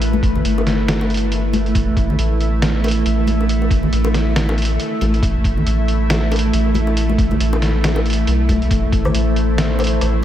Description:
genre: deep dubstep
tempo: 138 BPM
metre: 4/4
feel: swing 58% on 16ths, half-time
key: A minor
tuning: A4 = 439 Hz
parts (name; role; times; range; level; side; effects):
- bowed-like drone; sustained chords; 0.0-10.2 s; A3 to E5; -20 LUFS; equal; built-in reverb
- soft dub sub bass; bass; 0.0-10.2 s; G1 to B1; -18 LUFS; equal; none
- trip hop sampler-style drum kit; drums; 0.0-10.1 s; hi-hat, snare drum, woodblock; -24 LUFS; equal; none
- congas and bongos; percussion; 0.1-9.9 s; none; -25 LUFS; left 1 dB; dub echo
- electronic kick drum; drums; 0.2-9.0 s; none; -19 LUFS; equal; none
room: moderate cathedral reverb, RT60 5.5 s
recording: dreamy mix soaked in reverb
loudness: -15 LUFS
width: side -11 dB against mid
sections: 0.0-10.2 A section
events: none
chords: 0.0 Amadd9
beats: | 0.01 0.45 0.88 1.32 | 1.75 2.19 2.62 3.06 | 3.49 3.93 4.36 4.80 | 5.23 5.67 6.10 6.54 | 6.97 7.40 7.84 8.27 | 8.71 9.14 9.58 10.01

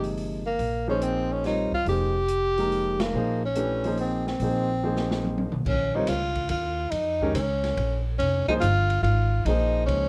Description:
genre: modal jazz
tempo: 142 BPM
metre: 3/4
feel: swing 67% on 8ths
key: Bb dorian from 5.7 s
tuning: A4 = 439 Hz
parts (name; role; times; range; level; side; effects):
- breathy tenor saxophone; melody; 0.0-10.1 s; Bb3 to G4; -29 LUFS; equal; none
- warm baby grand piano; accompaniment; 0.0-10.1 s; C3 to Db5; -31 LUFS; equal; none
- upright bass; bass; 0.0-10.1 s; F1 to F2; -30 LUFS; equal; none
- open jazz drum kit; drums; 0.0-10.0 s; crash cymbal, hi-hat, kick drum, ride cymbal, snare drum, toms; -37 LUFS; equal; none
room: moderate studio reverb, RT60 0.6 s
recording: none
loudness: -25 LUFS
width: mono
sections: 0.0-5.7 A section; 5.7-10.1 B section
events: band accent 2.9; drum fill 4.8-5.7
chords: 0.0 Cm7; 0.6 Bb7sus2; 5.7 Bbm9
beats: 0.17 | 0.59 1.02 1.44 | 1.86 2.29 2.71 | 3.13 3.55 3.98 | 4.40 4.82 5.24 | 5.66 6.08 6.51 | 6.93 7.35 7.77 | 8.19 8.62 9.04 | 9.46 9.88

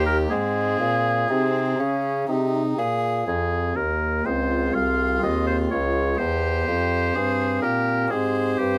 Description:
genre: classical, baroque-style sonata movement with continuo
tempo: 62 BPM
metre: 3/4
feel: straight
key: Ab major, F minor from 3.3 s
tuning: A4 = 439 Hz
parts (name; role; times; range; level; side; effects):
- warm violin; melody; 0.0-8.8 s; C4 to C5; -33 LUFS; equal; none
- clear oboe; second line; 0.0-8.8 s; G4 to F5; -28 LUFS; equal; none
- pipe organ, stopped flute; accompaniment; 0.0-8.8 s; C2 to Ab4; -29 LUFS; equal; none
- warm bassoon; bass; 0.0-8.8 s; C2 to Db3; -27 LUFS; equal; none
room: light reverb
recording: close, detailed microphones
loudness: -23 LUFS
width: mono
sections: 0.0-3.3 A section; 3.3-8.8 A section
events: none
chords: 0.3 Ab; 3.3 Fm; 6.2 C/E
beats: | 0.30 1.30 2.29 | 3.27 4.25 5.22 | 6.19 7.15 8.11

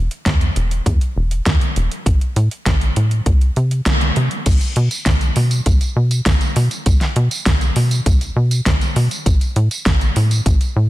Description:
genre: synthwave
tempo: 100 BPM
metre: 4/4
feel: straight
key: unclear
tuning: A4 = 440 Hz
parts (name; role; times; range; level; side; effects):
- tight sequencer bass; bass; 0.0-10.9 s; E1 to C3; -16 LUFS; equal; none
- pop drum kit; drums; 0.1-10.7 s; crash cymbal, hi-hat, snare drum, tambourine; -21 LUFS; right 1 dB; studio reverb
- electronic kick drum; drums; 0.3-10.6 s; none; -17 LUFS; equal; studio reverb
room: light reverb, digital ambience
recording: dense, heavily limited modern master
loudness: -14 LUFS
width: side -16 dB against mid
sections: 0.0-4.5 A section; 4.5-10.9 B section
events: kick drops out 3.9-4.5; band accent 3.9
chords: none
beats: 0.26 0.86 1.46 | 2.06 2.66 3.26 3.86 | 4.46 5.06 5.66 6.26 | 6.86 7.46 8.06 8.66 | 9.26 9.86 10.46

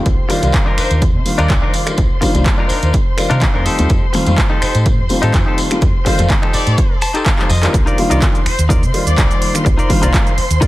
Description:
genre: filtered disco house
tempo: 125 BPM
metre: 4/4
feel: swing 54% on 16ths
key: F mixolydian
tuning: A4 = 438 Hz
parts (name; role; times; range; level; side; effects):
- warm concert grand piano; accompaniment; 0.0-10.3 s; Eb3 to F4; -19 LUFS; left 1 dB; phaser, sidechain pumping, low-pass filter
- muted symphonic violin section; sustained chords; 0.0-10.7 s; C5 to C6; -25 LUFS; left 2 dB; vintage 12-bit sampler grit, sidechain pumping, low-pass filter
- fingered electric bass; bass; 0.1-10.6 s; F1 to C3; -16 LUFS; equal; sidechain pumping, low-pass filter
- electronic kick drum; drums; 0.1-10.7 s; none; -15 LUFS; equal; none
- punchy analog drum machine; drums; 0.1-10.7 s; finger snaps, handclaps, hi-hat, shaker; -22 LUFS; right 1 dB; sidechain pumping on hats, sidechain pumping on cymbals, sidechain pumping on perc
- tambourine; percussion; 0.1-7.7 s; none; -30 LUFS; left 2 dB; sidechain pumping on perc, low-pass filter on perc
- direct-recorded clean electric guitar; riff; 0.3-10.7 s; D4 to A5; -21 LUFS; left 3 dB; sidechain pumping, low-pass filter
- bright trumpet section; melody; 0.8-9.5 s; C5 to D5; -26 LUFS; left 2 dB; vintage 12-bit sampler grit, sidechain pumping, low-pass filter, digital delay
room: studio reverb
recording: none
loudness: -12 LUFS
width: side -17 dB against mid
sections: 0.0-7.7 A section; 7.7-10.7 B section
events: clean electric guitar fill 6.8-7.7; drum fill 7.4-7.7; drop 7.7-10.7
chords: 0.1 F9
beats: | 0.06 0.54 1.02 1.50 | 1.98 2.46 2.94 3.42 | 3.90 4.38 4.86 5.34 | 5.82 6.30 6.78 7.26 | 7.74 8.22 8.70 9.18 | 9.66 10.14 10.62

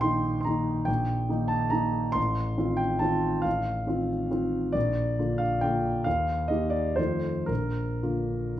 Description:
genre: classical, piano waltz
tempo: 107-148 BPM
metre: 3/4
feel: rubato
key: Bb major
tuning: A4 = 441 Hz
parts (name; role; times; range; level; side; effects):
- dark concert grand piano; solo; 0.0-8.6 s; A1 to C6; -25 LUFS; equal; none
room: moderate recital hall reverb, RT60 1.2 s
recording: recorded in a church or concert hall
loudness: -25 LUFS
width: side -12 dB against mid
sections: 0.0-8.6 A section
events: none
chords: 0.0 Eb/Bb; 2.2 F7/A; 4.8 Bb; 6.1 Eb; 7.0 F7; 7.5 Bb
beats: 0.03 0.46 | 0.88 1.31 1.74 | 2.17 2.59 3.03 | 3.45 3.88 4.32 | 4.75 5.18 5.63 | 6.06 6.50 6.98 | 7.49 8.02 8.57

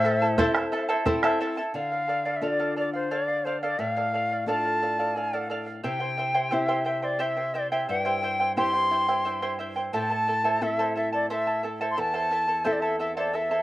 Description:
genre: andean folk, Andean ensemble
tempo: 88 BPM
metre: 3/4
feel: straight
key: unclear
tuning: A4 = 439 Hz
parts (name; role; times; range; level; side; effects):
- bright reedy large quena; melody; 0.0-13.6 s; C5 to C6; -26 LUFS; left 1 dB; slapback echo
- mellow polished pan flute; second line; 0.0-1.1 s; C5; -31 LUFS; left 2 dB; slapback echo
- charango; accompaniment; 0.0-13.6 s; E4 to A5; -28 LUFS; right 2 dB; slapback echo
- nylon-string guitar; accompaniment; 0.0-13.6 s; E2 to E5; -31 LUFS; left 2 dB; none
- bombo; percussion; 0.0-1.7 s; none; -28 LUFS; right 3 dB; slapback echo
room: light reverb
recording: recorded outdoors, with no room sound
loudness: -24 LUFS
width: side -16 dB against mid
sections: 0.0-1.7 A section; 1.7-13.6 B section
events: nylon-string guitar fill 0.7-1.7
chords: 0.0 Am; 1.7 Dm; 5.8 C; 9.9 Am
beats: 0.39 1.06 | 1.74 2.42 3.11 | 3.79 4.47 5.15 | 5.84 6.52 7.20 | 7.89 8.57 9.25 | 9.93 10.62 11.30 | 11.98 12.66 13.34

